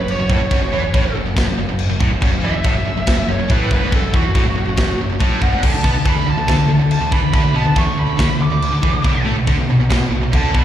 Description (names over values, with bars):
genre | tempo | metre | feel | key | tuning
heavy metal | 141 BPM | 4/4 | straight | F# minor | A4 = 439 Hz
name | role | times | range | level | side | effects
bluesy overdriven lead guitar | melody | 0.0-10.6 s | F#4 to D6 | -23 LUFS | right 2 dB | distortion, slapback echo
heavy high-gain guitar | riff | 0.0-10.6 s | F#2 to B3 | -23 LUFS | right 7 dB | distortion, slapback echo
high-gain distorted guitar | riff | 0.0-10.6 s | F#2 to B3 | -24 LUFS | left 1 dB | distortion, slapback echo
sludgy distorted guitar | riff | 0.0-10.6 s | F#2 to B3 | -23 LUFS | left 6 dB | overdrive, slapback echo
growling picked electric bass | bass | 0.0-10.6 s | F#1 to B2 | -21 LUFS | equal | overdrive
tight metal drum kit | drums | 0.1-10.6 s | china cymbal, crash cymbal, kick drum, snare drum | -19 LUFS | equal | none
room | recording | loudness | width
little or no reverb | live gig heard through the venue's PA, recital hall reverb | -14 LUFS | side -11 dB against mid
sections
0.0-10.6 A section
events
lead electric guitar solo 0.0-10.6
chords
0.0 F#m; 5.6 D5; 9.0 Bm7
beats
0.08 | 0.51 0.94 1.36 1.79 | 2.22 2.64 3.07 3.50 | 3.92 4.35 4.78 5.20 | 5.63 6.05 6.48 6.91 | 7.33 7.76 8.19 8.61 | 9.04 9.47 9.89 10.32